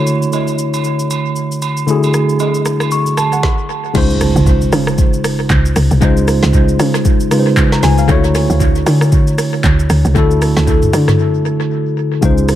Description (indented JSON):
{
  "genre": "amapiano",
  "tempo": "116 BPM",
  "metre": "4/4",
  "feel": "swing 58% on 16ths",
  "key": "unclear",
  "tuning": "A4 = 438 Hz",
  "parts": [
    { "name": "tine electric piano", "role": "accompaniment", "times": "0.0-12.6 s", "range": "Db3 to C#6", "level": "-14 LUFS", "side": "left 1 dB", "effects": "overdrive, auto-pan, low-pass filter, tape echo" },
    { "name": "afro-pop drum kit", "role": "drums", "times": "0.1-12.6 s", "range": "crash cymbal, handclaps, hi-hat, kick drum, rim click, shaker, snare drum, toms", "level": "-16 LUFS", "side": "right 1 dB", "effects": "tape echo" },
    { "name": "agogo bells and woodblock", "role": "percussion", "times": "0.3-3.3 s", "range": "none", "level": "-24 LUFS", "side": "right 8 dB", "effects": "tape echo" },
    { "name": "impact", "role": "sound effects", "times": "4.1-6.0 s", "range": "none", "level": "-24 LUFS", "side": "right 3 dB", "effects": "none" },
    { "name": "woody log drum bass", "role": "bass", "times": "4.0-12.6 s", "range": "C2 to D3", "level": "-14 LUFS", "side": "right 1 dB", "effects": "none" }
  ],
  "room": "light reverb, digital ambience",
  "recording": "echo-heavy mix",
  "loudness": "-11 LUFS",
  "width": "side -12 dB against mid",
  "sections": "0.0-4.0 A section; 4.0-12.6 B section",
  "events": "filter sweep on tine electric piano 0.0-4.0; stop 3.4-4.0; drop 4.0-12.6; impact 4.0-6.0; break 11.2-12.2",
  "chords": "0.0 Dmaj9; 4.0 Dbmaj9; 8.1 Dmaj9",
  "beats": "0.33 0.85 1.36 | 1.88 2.40 2.92 3.43 | 3.95 4.47 4.99 5.50 | 6.02 6.54 7.05 7.57 | 8.09 8.61 9.12 9.64 | 10.16 10.68 11.19 11.71 | 12.23"
}